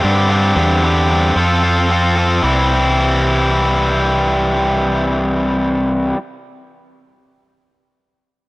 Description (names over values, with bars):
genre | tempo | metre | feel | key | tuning
rock | 112 BPM | 4/4 | straight | C major | A4 = 439 Hz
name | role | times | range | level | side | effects
distorted electric guitar | riff | 0.0-6.2 s | G2 to A4 | -14 LUFS | left 1 dB | overdrive
growling fingered electric bass | bass | 0.0-6.1 s | C2 to G2 | -18 LUFS | right 1 dB | overdrive
room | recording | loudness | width
light reverb, digital ambience | rough home demo mix | -13 LUFS | side -21 dB against mid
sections
0.0-2.4 A section; 2.4-6.7 B section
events
none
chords
0.0 Gsus4; 1.4 F; 2.4 C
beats
| 0.30 0.83 1.37 1.90 | 2.44 2.97 3.51 4.04 | 4.58 5.12 5.65 6.19